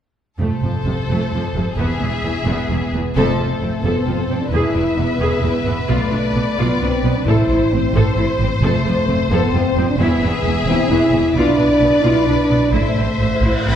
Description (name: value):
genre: cinematic, epic orchestral film score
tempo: 132 BPM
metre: 3/4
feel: straight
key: unclear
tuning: A4 = 439 Hz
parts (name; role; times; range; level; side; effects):
- rich symphonic violin section; melody; 0.4-13.8 s; C5 to B5; -26 LUFS; left 5 dB; none
- rich symphonic violin section; second line; 0.4-13.8 s; G#4 to C5; -25 LUFS; left 2 dB; none
- rich studio viola section; accompaniment; 0.4-13.7 s; C3 to A4; -25 LUFS; equal; none
- rich studio cello section; bass; 0.4-13.7 s; E2 to B2; -22 LUFS; right 1 dB; none
- warm symphonic double bass section; bass; 0.4-13.7 s; E1 to B1; -21 LUFS; right 1 dB; none
- mellow French horn section; sustained chords; 2.7-13.8 s; A3 to E4; -19 LUFS; equal; none
- timpani; percussion; 7.3-7.9 s; A2; -24 LUFS; left 1 dB; none
- cymbal swell; sound effects; 13.2-13.8 s; none; -27 LUFS; equal; none
room: wet scoring stage reverb, RT60 1.6 s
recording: heard from further back in the room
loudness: -15 LUFS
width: side -9 dB against mid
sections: 0.4-3.2 A section; 3.2-13.8 B section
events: band accent 3.2-3.6; cymbal swell 13.2-13.8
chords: 0.4 F; 1.8 E; 3.2 F; 4.5 E; 5.9 Bdim; 7.3 Am; 8.6 F; 10.0 E; 11.4 Bdim; 12.7 Am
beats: | 0.41 0.87 1.33 | 1.78 2.23 2.69 | 3.16 3.62 4.07 | 4.53 4.99 5.44 | 5.90 6.35 6.81 | 7.27 7.72 8.18 | 8.63 9.09 9.54 | 9.99 10.45 10.90 | 11.36 11.81 12.27 | 12.73 13.20 13.66